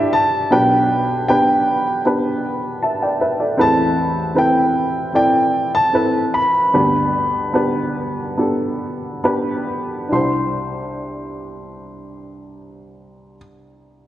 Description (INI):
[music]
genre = pop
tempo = 67-78 BPM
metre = 4/4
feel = straight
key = C major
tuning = A4 = 439 Hz
[part]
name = clear grand piano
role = melody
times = 0.0-13.3 s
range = E5 to C6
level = -18 LUFS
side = equal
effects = none
[part]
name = warm upright piano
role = accompaniment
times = 0.0-14.1 s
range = G1 to A5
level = -18 LUFS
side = equal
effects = none
[sound]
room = wet scoring stage reverb, RT60 1.8 s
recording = worn, warbling old tape, cassette tape, warbly pitch drift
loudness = -15 LUFS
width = side -13 dB against mid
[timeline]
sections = 0.0-10.1 A section; 10.1-13.7 B section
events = slowing down 3.6-10.1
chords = 0.0 Cadd9; 0.5 G/B; 3.6 Amadd9; 6.7 G; 10.1 Cadd9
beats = | 0.52 1.29 2.06 2.83 | 3.60 4.37 5.15 5.93 | 6.73 7.55 8.38 9.24 | 10.12 11.01 11.91 12.80